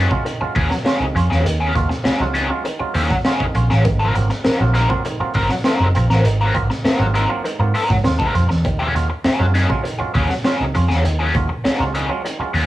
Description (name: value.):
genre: funk.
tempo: 100 BPM.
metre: 4/4.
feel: straight.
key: Eb dorian.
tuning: A4 = 440 Hz.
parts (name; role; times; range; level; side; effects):
crunchy overdriven guitar; accompaniment; 0.0-12.7 s; Gb3 to Bb4; -21 LUFS; left 2 dB; wah, cassette tape.
auto-wah clav; stabs; 0.0-12.6 s; Ab2 to F4; -26 LUFS; right 5 dB; cassette tape.
vintage muted picked electric bass; bass; 0.0-12.7 s; Gb1 to Ab2; -18 LUFS; right 1 dB; none.
crunchy breakbeat drum kit; drums; 0.1-12.7 s; hi-hat, kick drum, snare drum; -22 LUFS; equal; none.
room: small room ambience.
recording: home recording on cassette.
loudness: -16 LUFS.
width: side -15 dB against mid.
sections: 0.0-12.7 A section.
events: none.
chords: 0.0 Ebm11; 3.9 Ab13; 8.7 Ebm11.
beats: 0.26 0.86 | 1.46 2.06 2.66 3.26 | 3.86 4.46 5.06 5.66 | 6.25 6.85 7.45 8.05 | 8.65 9.25 9.85 10.45 | 11.05 11.65 12.25.